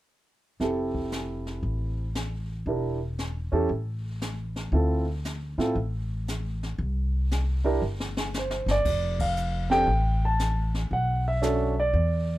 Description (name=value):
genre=jazz piano trio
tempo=116 BPM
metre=4/4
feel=swing 66% on 8ths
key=F major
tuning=A4 = 439 Hz
part: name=warm grand piano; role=melody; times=0.6-12.4 s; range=C4 to A5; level=-26 LUFS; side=right 2 dB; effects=none
part: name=upright bass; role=bass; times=0.6-12.4 s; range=E1 to A2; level=-27 LUFS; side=equal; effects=none
part: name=jazz brush drum kit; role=drums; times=0.6-12.4 s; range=brushed snare drum, hi-hat, kick drum, ride cymbal, snare drum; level=-35 LUFS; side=left 2 dB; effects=none
room=light reverb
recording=dark, warm production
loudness=-25 LUFS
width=side -16 dB against mid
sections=0.6-8.9 A section; 8.9-12.4 B section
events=drum fill 7.8-8.9; band accent 9.1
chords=0.6 Fmaj9; 2.7 Em7b5; 3.7 N.C.; 4.7 Dm9; 6.8 C5; 8.9 F6; 10.9 Bm9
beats=| 0.60 1.12 1.63 2.15 | 2.66 3.18 3.70 4.21 | 4.73 5.24 5.76 6.28 | 6.79 7.31 7.82 8.34 | 8.85 9.37 9.88 10.40 | 10.91 11.43 11.94